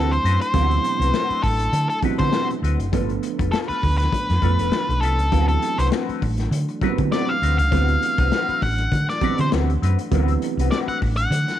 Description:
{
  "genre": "funk",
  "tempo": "100 BPM",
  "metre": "4/4",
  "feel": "swing 56% on 16ths",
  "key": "D mixolydian",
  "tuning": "A4 = 440 Hz",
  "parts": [
    { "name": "octave-fuzz lead guitar", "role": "melody", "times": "0.0-11.6 s", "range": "A4 to F#5", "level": "-23 LUFS", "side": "left 1 dB", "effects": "distortion" },
    { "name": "electric guitar through a small old amp", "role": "accompaniment", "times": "0.0-11.5 s", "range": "C4 to B4", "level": "-30 LUFS", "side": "left 10 dB", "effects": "wah" },
    { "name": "mellow tonewheel organ", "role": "sustained chords", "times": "0.0-11.6 s", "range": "E3 to E4", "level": "-32 LUFS", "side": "equal", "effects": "fast rotary speaker" },
    { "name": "dark upright piano", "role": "stabs", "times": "0.0-10.8 s", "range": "B2 to C4", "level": "-27 LUFS", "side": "right 11 dB", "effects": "none" },
    { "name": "hollow-body short-scale fingered electric bass", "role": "bass", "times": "0.0-11.4 s", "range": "F1 to D3", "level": "-21 LUFS", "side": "equal", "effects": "none" },
    { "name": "crunchy breakbeat drum kit", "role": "drums", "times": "0.1-11.6 s", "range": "hi-hat, kick drum, snare drum", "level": "-27 LUFS", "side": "left 3 dB", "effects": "none" }
  ],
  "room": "light reverb, small room ambience",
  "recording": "1960s-style stereo with parts hard left and right",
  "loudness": "-18 LUFS",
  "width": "side -11 dB against mid",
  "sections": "0.0-11.6 A section",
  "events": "lead electric guitar solo 0.0-11.6",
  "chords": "0.0 D13; 2.9 G9 (rootless); 5.3 D13",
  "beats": "| 0.54 1.13 1.73 2.33 | 2.93 3.53 4.12 4.72 | 5.32 5.92 6.52 7.12 | 7.72 8.32 8.92 9.52 | 10.12 10.72 11.32"
}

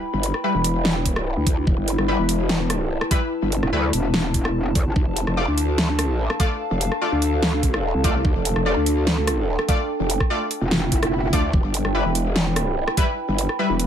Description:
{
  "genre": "heavy wobble dubstep",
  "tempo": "146 BPM",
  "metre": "4/4",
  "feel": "half-time",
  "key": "E phrygian",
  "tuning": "A4 = 440 Hz",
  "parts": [
    { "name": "sub drop and swell", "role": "sound effects", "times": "0.0, 10.9-11.5 s", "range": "none", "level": "-27 LUFS", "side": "right 3 dB", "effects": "none" },
    { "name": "warbly tape-like pad", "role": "texture", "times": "0.0-13.9 s", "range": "D4 to B5", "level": "-27 LUFS", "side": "equal", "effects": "chorus, built-in reverb, sidechain pumping" },
    { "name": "growl bass", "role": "bass", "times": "0.1-13.9 s", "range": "E1 to D2", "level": "-22 LUFS", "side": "equal", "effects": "chorus, overdrive" },
    { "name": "dubstep drum kit", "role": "drums", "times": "0.2-13.9 s", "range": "hi-hat, rim click, snare drum", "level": "-24 LUFS", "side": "equal", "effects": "overdrive" },
    { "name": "orchestra-hit-like synth stab", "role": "stabs", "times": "0.4-13.7 s", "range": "G3 to D5", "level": "-26 LUFS", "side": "left 2 dB", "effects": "built-in reverb, cassette tape, ping-pong delay" },
    { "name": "electronic kick drum", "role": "drums", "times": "1.1-13.1 s", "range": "none", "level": "-21 LUFS", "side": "equal", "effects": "overdrive" },
    { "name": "metallic wobble bass", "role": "bass", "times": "3.6-4.9, 10.6-11.3 s", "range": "E1 to D2", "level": "-22 LUFS", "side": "equal", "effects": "chorus, overdrive" }
  ],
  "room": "digital ambience",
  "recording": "none",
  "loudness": "-19 LUFS",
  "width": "side -9 dB against mid",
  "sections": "0.0-13.9 A section",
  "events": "swell 10.9-11.5",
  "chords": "0.0 Em; 5.0 Dm; 11.5 Em",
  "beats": "| 0.03 0.44 0.85 1.26 | 1.67 2.08 2.49 2.90 | 3.32 3.73 4.14 4.55 | 4.96 5.37 5.78 6.19 | 6.60 7.01 7.42 7.84 | 8.25 8.66 9.07 9.48 | 9.89 10.30 10.71 11.12 | 11.54 11.95 12.36 12.77 | 13.18 13.59"
}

